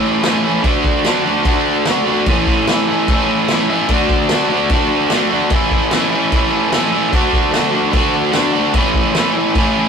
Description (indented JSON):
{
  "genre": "garage rock duo or trio",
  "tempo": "148 BPM",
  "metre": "4/4",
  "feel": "straight",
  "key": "unclear",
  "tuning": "A4 = 440 Hz",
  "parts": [
    { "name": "crunchy overdriven guitar", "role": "riff", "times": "0.0-9.9 s", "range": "A2 to F#4", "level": "-14 LUFS", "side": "equal", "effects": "none" },
    { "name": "vintage drum kit", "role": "drums", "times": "0.2-9.6 s", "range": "crash cymbal, kick drum, snare drum", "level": "-19 LUFS", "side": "equal", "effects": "none" }
  ],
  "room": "moderate studio reverb, RT60 0.6 s",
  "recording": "rough rehearsal-room recording, warm saturation",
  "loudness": "-13 LUFS",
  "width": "side -6 dB against mid",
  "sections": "0.0-9.9 A section",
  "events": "none",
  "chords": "0.0 A; 0.6 D; 2.3 A; 3.9 D; 5.5 A; 7.1 D; 8.7 A",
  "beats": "0.24 | 0.65 1.05 1.46 1.87 | 2.27 2.68 3.08 3.49 | 3.90 4.30 4.71 5.11 | 5.52 5.92 6.33 6.73 | 7.13 7.54 7.94 8.35 | 8.75 9.15 9.55"
}